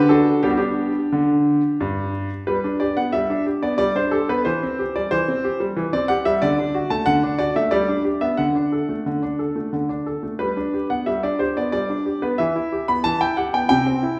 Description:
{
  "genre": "classical-period piano sonatina",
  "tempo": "91 BPM",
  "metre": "3/4",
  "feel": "straight",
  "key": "G major",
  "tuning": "A4 = 439 Hz",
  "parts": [
    { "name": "clear baby grand piano", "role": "solo", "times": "0.0-14.2 s", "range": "G2 to B5", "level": "-21 LUFS", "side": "equal", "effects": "none" }
  ],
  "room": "wet recital hall reverb, RT60 1.6 s",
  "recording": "heard from further back in the room",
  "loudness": "-21 LUFS",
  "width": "mono",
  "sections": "0.0-2.5 A section; 2.5-14.2 B section",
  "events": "none",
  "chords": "0.4 G; 4.5 C/E; 6.4 D; 7.7 G; 8.4 D; 10.4 G; 12.4 Em; 13.7 C"
}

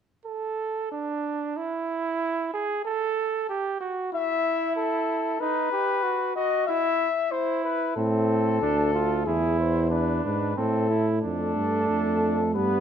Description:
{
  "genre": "classical, imitative canzona for brass ensemble",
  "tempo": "93 BPM",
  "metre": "3/4",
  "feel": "straight",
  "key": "A minor",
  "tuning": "A4 = 440 Hz",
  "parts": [
    { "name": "warm flugelhorn", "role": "second line", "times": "0.3-12.8 s", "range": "B3 to A4", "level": "-28 LUFS", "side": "right 5 dB", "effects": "none" },
    { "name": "dark cornet", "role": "melody", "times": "4.1-12.8 s", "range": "G#4 to E5", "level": "-26 LUFS", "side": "left 7 dB", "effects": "none" },
    { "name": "warm bass trombone", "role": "bass", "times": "8.0-12.8 s", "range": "D2 to A2", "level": "-26 LUFS", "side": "right 1 dB", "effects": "none" },
    { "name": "dark euphonium", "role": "accompaniment", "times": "11.2-12.8 s", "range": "G3 to A3", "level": "-26 LUFS", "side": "right 3 dB", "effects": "none" }
  ],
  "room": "moderate recital hall reverb, RT60 1.4 s",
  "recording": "none",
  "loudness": "-23 LUFS",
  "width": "side -8 dB against mid",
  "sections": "0.0-11.2 A section; 11.2-12.8 B section",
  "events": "none",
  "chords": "0.0 N.C.; 3.5 Em; 4.8 Esus4; 5.4 B/D#; 6.7 N.C.; 7.3 Am/E; 8.6 Dm; 9.3 E; 10.6 Am; 11.2 Dm/F"
}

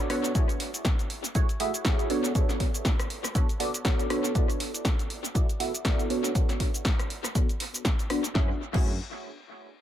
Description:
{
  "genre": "filtered disco house",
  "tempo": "120 BPM",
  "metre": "4/4",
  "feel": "swing 57% on 16ths",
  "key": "F# minor",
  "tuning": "A4 = 440 Hz",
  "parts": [
    { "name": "funky polysynth comp", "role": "accompaniment", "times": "0.0-8.9 s", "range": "A3 to E5", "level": "-31 LUFS", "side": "right 1 dB", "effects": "chorus, phaser, sidechain pumping, low-pass filter, dub echo" },
    { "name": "punchy analog drum machine", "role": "drums", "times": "0.0-8.8 s", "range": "crash cymbal, hi-hat, rim click, shaker, snare drum", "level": "-32 LUFS", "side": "equal", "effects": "sidechain pumping on hats, sidechain pumping on perc, sidechain pumping on cymbals, dub echo" },
    { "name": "electronic kick drum", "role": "drums", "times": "0.4-8.8 s", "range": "none", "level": "-26 LUFS", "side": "equal", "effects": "none" },
    { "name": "modern bright fingered electric bass", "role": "bass", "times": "8.4-9.0 s", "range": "F#2", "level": "-35 LUFS", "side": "equal", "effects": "sidechain pumping, low-pass filter" }
  ],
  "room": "light reverb, digital ambience",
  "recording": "echo-heavy mix",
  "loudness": "-25 LUFS",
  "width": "side -11 dB against mid",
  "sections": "0.0-8.3 A section; 8.3-9.8 B section",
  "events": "filter sweep 0.0-8.3",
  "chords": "0.3 F#m9; 2.1 Bm7; 4.3 D69; 6.1 Bm9; 8.3 F#m9"
}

